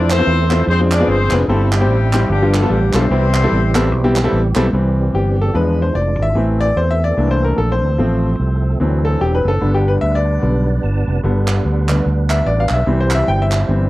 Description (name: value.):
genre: uptempo gospel.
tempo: 148 BPM.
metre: 4/4.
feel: swing 59% on 8ths.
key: C major.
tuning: A4 = 439 Hz.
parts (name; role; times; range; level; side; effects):
mellow horn section; melody; 0.0-4.3 s; G3 to D5; -20 LUFS; left 2 dB; none.
clear baby grand piano; accompaniment; 0.0-13.9 s; G2 to G5; -18 LUFS; left 2 dB; none.
tonewheel organ; sustained chords; 0.0-13.9 s; E3 to A5; -25 LUFS; right 4 dB; slow rotary speaker, overdrive, chorus vibrato.
fingered electric bass; bass; 0.0-13.9 s; E1 to F2; -16 LUFS; equal; none.
group handclap; percussion; 0.1-4.6, 11.5-13.6 s; none; -25 LUFS; right 3 dB; none.
room: little or no reverb.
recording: dry, close 1970s-style studio recording.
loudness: -13 LUFS.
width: side -17 dB against mid.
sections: 0.0-4.7 A section; 4.7-13.9 B section.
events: grand piano solo 4.7-13.9; tonewheel organ fill 10.4-11.2.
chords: 0.0 Fmaj7; 0.7 Fm6; 1.5 C/G; 2.3 G7; 3.1 Cmaj7; 4.7 C; 5.5 E7b9; 6.4 Am; 7.2 C13; 8.0 F/A; 8.8 D7; 9.6 G; 12.9 C.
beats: 0.27 0.68 1.08 | 1.49 1.89 2.30 2.70 | 3.11 3.52 3.92 4.33 | 4.73 5.14 5.55 5.96 | 6.36 6.77 7.18 7.58 | 7.99 8.40 8.80 9.21 | 9.62 10.03 10.43 10.84 | 11.25 11.65 12.06 12.46 | 12.87 13.28 13.68.